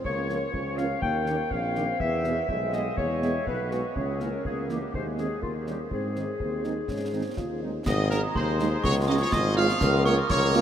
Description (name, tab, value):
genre	military-style march for wind band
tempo	123 BPM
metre	2/4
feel	straight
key	Ab major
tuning	A4 = 440 Hz
part	warm woodwind section	second line	0.0-10.6 s	Eb4 to G5	-31 LUFS	left 2 dB	none
part	warm tuba	bass	0.0-10.6 s	Ab1 to Ab2	-29 LUFS	left 1 dB	none
part	concert bass drum, concert snare drum and clash cymbals	drums	0.0-10.6 s	none	-34 LUFS	equal	none
part	clear euphonium	second line	0.1-7.9 s	G#3 to F4	-35 LUFS	right 2 dB	none
part	bright trumpet section	melody	0.3-10.6 s	Eb4 to F5	-31 LUFS	equal	none
part	dark French horn section	accompaniment	0.3-10.6 s	B2 to F4	-33 LUFS	right 4 dB	none
part	glockenspiel with soft plastic mallets	second line	7.9-10.6 s	Bb5 to F6	-29 LUFS	right 5 dB	none
part	warm trombone section	sustained chords	7.9-10.6 s	Eb3 to Bb3	-33 LUFS	left 1 dB	none
room	wet huge ambient reverb, RT60 7.9 s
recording	in a vast, echoing space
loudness	-24 LUFS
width	side -9 dB against mid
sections	0.0-7.9 A section; 7.9-10.6 B section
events	none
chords	0.0 Bbm/Db; 1.0 Eb7; 2.0 E; 4.0 Bbm7b5/Db; 4.9 Ab/Eb; 5.4 Eb9; 5.9 Ab; 8.8 Db; 9.8 Bbm/Db